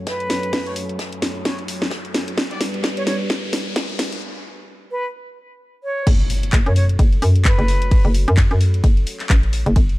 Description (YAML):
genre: bass house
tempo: 130 BPM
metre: 4/4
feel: swing 58% on 16ths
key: F# phrygian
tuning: A4 = 440 Hz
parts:
  - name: dark analog pad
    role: sustained chords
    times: 0.0-10.0 s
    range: F#3 to D5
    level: -31 LUFS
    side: equal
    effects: lush chorus, sidechain pumping
  - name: riser and impact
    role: sound effects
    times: 0.0-7.9 s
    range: none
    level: -32 LUFS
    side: equal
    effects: none
  - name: silver concert flute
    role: melody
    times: 0.1-8.1 s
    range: B4 to C#5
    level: -27 LUFS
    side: right 1 dB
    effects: tape echo
  - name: electronic kick drum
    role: drums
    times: 0.1-9.9 s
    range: none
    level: -15 LUFS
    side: equal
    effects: high-pass filter on kick
  - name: house drum kit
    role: drums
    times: 0.1-10.0 s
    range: crash cymbal, handclaps, hi-hat, ride cymbal, snare drum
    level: -25 LUFS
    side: equal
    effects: none
  - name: loose indie drum kit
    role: drums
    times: 0.1-9.9 s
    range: hi-hat, snare drum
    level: -36 LUFS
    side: left 2 dB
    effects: none
  - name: brilliant horn section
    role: stabs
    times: 0.7-2.6 s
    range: A3 to D5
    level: -38 LUFS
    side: left 3 dB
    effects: sidechain pumping, tape echo
  - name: hollow knocking FM bass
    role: bass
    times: 6.1-10.0 s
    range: F#1 to F#2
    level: -17 LUFS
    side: equal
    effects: tube saturation, sidechain pumping
room: small room ambience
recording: dark, warm production, high-pass filter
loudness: -16 LUFS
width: side -19 dB against mid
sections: 0.0-6.1 A section; 6.1-10.0 B section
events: build-up 0.0-6.1; drum fill 0.0-4.2; riser 0.0-4.2; filter sweep on analog synth pad 0.0-6.1; filter sweep 0.0-6.1; break 4.2-6.1; drop 6.1-10.0; impact 6.1-7.9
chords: 0.0 F#m; 2.4 G; 6.1 F#m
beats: 0.07 | 0.53 0.99 1.45 1.91 | 2.38 2.84 3.30 3.76 | 4.22 4.68 5.14 5.61 | 6.07 6.53 6.99 7.45 | 7.91 8.38 8.84 9.30 | 9.76